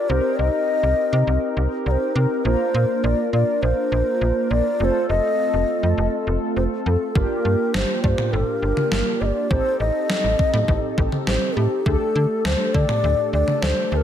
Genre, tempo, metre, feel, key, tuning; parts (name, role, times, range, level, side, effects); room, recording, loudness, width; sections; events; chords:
synth-pop; 102 BPM; 4/4; straight; G minor; A4 = 440 Hz
mellow hollow bass bansuri; melody; 0.0-14.0 s; G4 to Eb5; -22 LUFS; left 2 dB; tape echo
mellow synth brass; accompaniment; 0.0-14.0 s; A3 to Bb4; -25 LUFS; equal; chorus
slap-like FM bass; bass; 0.1-14.0 s; F1 to D3; -21 LUFS; equal
clean 12-bit digital drum machine; drums; 7.2-13.8 s; kick drum, snare drum, toms; -23 LUFS; equal; overdrive, gated reverb
light reverb; -18 LUFS; side -10 dB against mid
0.0-14.0 A section
0.1 Cm7; 2.4 Bb; 4.8 F; 7.2 Gm7; 9.5 Am7b5; 11.9 Dsus4